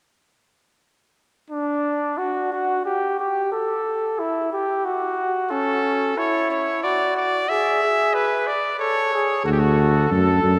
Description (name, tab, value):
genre	classical, imitative canzona for brass ensemble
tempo	91 BPM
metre	3/4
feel	straight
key	D major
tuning	A4 = 440 Hz
part	mellow trumpet	second line	1.5-10.6 s	C#4 to A4	-25 LUFS	equal	none
part	bright trumpet	melody	5.5-10.6 s	F#4 to E5	-24 LUFS	equal	none
part	mellow tuba	bass	9.4-10.6 s	D2 to F#2	-20 LUFS	equal	none
room	wet church reverb, RT60 3.4 s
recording	none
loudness	-22 LUFS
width	mono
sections	1.5-10.6 A section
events	none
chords	1.5 N.C.; 5.5 A/C#; 6.8 D/F#; 7.5 E/G#; 8.8 A; 9.5 D